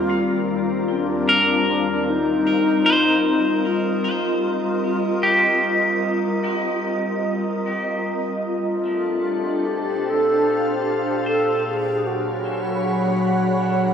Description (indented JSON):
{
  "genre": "ambient",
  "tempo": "76 BPM",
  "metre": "4/4",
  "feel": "straight",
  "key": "unclear",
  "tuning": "A4 = 440 Hz",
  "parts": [
    { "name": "mellow wooden-headed alto flute", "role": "melody", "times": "0.0-13.9 s", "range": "D4 to A4", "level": "-23 LUFS", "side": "equal", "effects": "tape echo" },
    { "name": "glassy FM pad", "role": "sustained chords", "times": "0.0-13.9 s", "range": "Eb2 to B5", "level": "-22 LUFS", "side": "left 1 dB", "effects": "ensemble chorus, built-in reverb" },
    { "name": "clean electric guitar", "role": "arpeggios", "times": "0.0-12.0 s", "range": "A3 to G5", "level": "-22 LUFS", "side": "equal", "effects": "spring reverb, tape echo" },
    { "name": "organ-like drone", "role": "drone", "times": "0.0-13.9 s", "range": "Bb2 to F4", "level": "-38 LUFS", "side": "equal", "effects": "ensemble chorus, built-in reverb" }
  ],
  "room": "wet concert hall reverb, RT60 2.4 s",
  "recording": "none",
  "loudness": "-18 LUFS",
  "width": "side -7 dB against mid",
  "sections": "0.0-8.5 A section; 8.5-13.9 B section",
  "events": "fade-in on clean electric guitar 8.5-13.9; fade-in on synth drone 8.5-13.9",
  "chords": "0.0 Ebadd9; 2.1 F5; 8.5 Dm7; 11.7 B5"
}